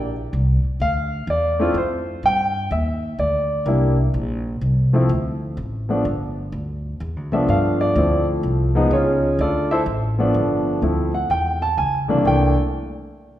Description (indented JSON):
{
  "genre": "jazz",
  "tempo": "126 BPM",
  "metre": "3/4",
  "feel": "swing 66% on 8ths",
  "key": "C mixolydian",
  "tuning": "A4 = 437 Hz",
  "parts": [
    { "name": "warm concert grand piano", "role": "melody", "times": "0.0-12.6 s", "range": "C2 to A5", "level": "-20 LUFS", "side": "equal", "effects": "none" },
    { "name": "upright bass", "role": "bass", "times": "0.0-12.5 s", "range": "G1 to G2", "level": "-22 LUFS", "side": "equal", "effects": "none" }
  ],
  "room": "wet recital hall reverb, RT60 1.7 s",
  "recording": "recorded in a church or concert hall",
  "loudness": "-18 LUFS",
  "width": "side -12 dB against mid",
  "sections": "0.0-6.5 A section; 6.5-12.3 B section; 12.3-13.4 C section",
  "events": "none",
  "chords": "0.0 C7(no3); 0.8 Dm7; 2.2 G5; 3.7 C7; 5.1 D5; 6.1 N.C.; 6.5 D7sus2; 7.5 G9; 8.0 Dm9; 8.9 Db; 9.4 Dm; 10.3 G9; 10.8 Dm9; 11.8 Db5; 12.3 C13"
}